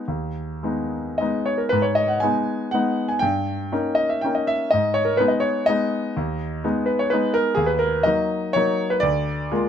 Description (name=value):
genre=classical, piano waltz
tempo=106-133 BPM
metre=3/4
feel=rubato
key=G# minor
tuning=A4 = 442 Hz
part: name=clear grand piano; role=solo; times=0.0-9.7 s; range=D2 to G#5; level=-20 LUFS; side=equal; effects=none
room=little or no reverb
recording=close, detailed microphones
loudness=-20 LUFS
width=side -8 dB against mid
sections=0.0-1.7 A section; 1.7-9.7 A section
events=none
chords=0.0 G#m; 3.2 D#7/G; 4.7 G#m; 7.6 D#m; 9.0 A#7/D